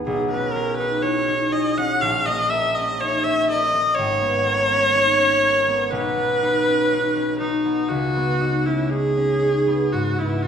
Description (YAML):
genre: classical, impressionist duo for viola and harp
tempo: 61 BPM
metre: 4/4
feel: rubato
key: unclear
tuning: A4 = 435 Hz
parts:
  - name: concert harp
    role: accompaniment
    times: 0.0-10.5 s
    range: G#1 to A#4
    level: -23 LUFS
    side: left 1 dB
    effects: none
  - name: rich viola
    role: melody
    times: 0.1-10.5 s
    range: D#4 to F#5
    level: -19 LUFS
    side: equal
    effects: none
room: wet recital hall reverb, RT60 1.5 s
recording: recorded in a church or concert hall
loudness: -18 LUFS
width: side -8 dB against mid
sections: 0.0-10.5 A section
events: none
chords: 0.1 B69; 2.0 A#m7; 4.0 G#madd9; 5.9 Bmaj9; 7.9 C#sus2